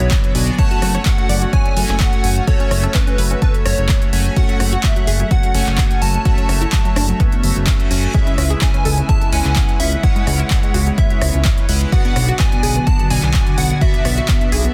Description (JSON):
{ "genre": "progressive house", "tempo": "127 BPM", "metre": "4/4", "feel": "straight", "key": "F# minor", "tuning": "A4 = 440 Hz", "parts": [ { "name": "plucky unison lead", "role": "melody", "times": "0.0-14.7 s", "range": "B4 to A5", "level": "-27 LUFS", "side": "equal", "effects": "sidechain pumping, digital delay" }, { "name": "evolving wavetable pad", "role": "sustained chords", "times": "0.0-14.7 s", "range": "C#3 to F#4", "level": "-30 LUFS", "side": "equal", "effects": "none" }, { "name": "unison pluck", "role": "arpeggios", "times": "0.0-14.7 s", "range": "F#3 to D5", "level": "-30 LUFS", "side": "equal", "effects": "sidechain pumping, digital delay" }, { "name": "chorused polysynth", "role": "stabs", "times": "0.0-14.7 s", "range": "B2 to G#5", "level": "-27 LUFS", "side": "equal", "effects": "sidechain pumping, digital delay" }, { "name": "fat analog bass", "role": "bass", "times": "0.0-14.7 s", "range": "F#1 to C#2", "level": "-20 LUFS", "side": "equal", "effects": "sidechain pumping" }, { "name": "deep house drum kit", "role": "drums", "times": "0.0-14.7 s", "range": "handclaps, hi-hat, rim click", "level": "-26 LUFS", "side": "equal", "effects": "sidechain pumping on hats, sidechain pumping on cymbals" }, { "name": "electronic kick drum", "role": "drums", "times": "0.1-14.4 s", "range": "none", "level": "-19 LUFS", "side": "equal", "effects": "none" }, { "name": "reverse cymbal", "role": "sound effects", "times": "7.6-8.1 s", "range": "none", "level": "-34 LUFS", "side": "equal", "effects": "none" } ], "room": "digital ambience", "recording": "dense, heavily limited modern master", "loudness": "-16 LUFS", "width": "mono", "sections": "0.0-14.7 A section", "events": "reverse cymbal 7.6-8.1", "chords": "0.0 Bm; 0.6 F#m; 8.1 C#m7; 11.9 Bm", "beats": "0.11 | 0.58 1.06 1.53 2.00 | 2.48 2.95 3.42 3.89 | 4.36 4.84 5.31 5.78 | 6.25 6.73 7.20 7.67 | 8.14 8.62 9.09 9.56 | 10.03 10.51 10.98 11.45 | 11.92 12.40 12.87 13.34 | 13.81 14.29" }